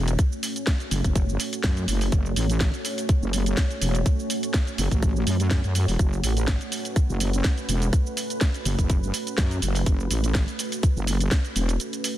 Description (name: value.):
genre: bass house.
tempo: 124 BPM.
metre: 4/4.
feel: swing 54% on 16ths.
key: F# minor.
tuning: A4 = 442 Hz.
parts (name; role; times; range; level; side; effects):
deep dark ambient pad; sustained chords; 0.0-12.2 s; A3 to C#5; -32 LUFS; right 2 dB; chorus, built-in reverb, sidechain pumping.
wobble bass; bass; 0.0-11.8 s; E1 to F#2; -24 LUFS; equal; chorus, tube saturation, sidechain pumping.
garage drum kit; drums; 0.1-12.2 s; hi-hat, shaker, snare drum; -29 LUFS; right 1 dB; none.
electronic kick drum; drums; 0.2-11.4 s; none; -22 LUFS; equal; none.
room: digital ambience.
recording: dense, heavily limited modern master.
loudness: -22 LUFS.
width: side -13 dB against mid.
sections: 0.0-12.2 A section.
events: break 11.8-12.2.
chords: 0.0 F#m.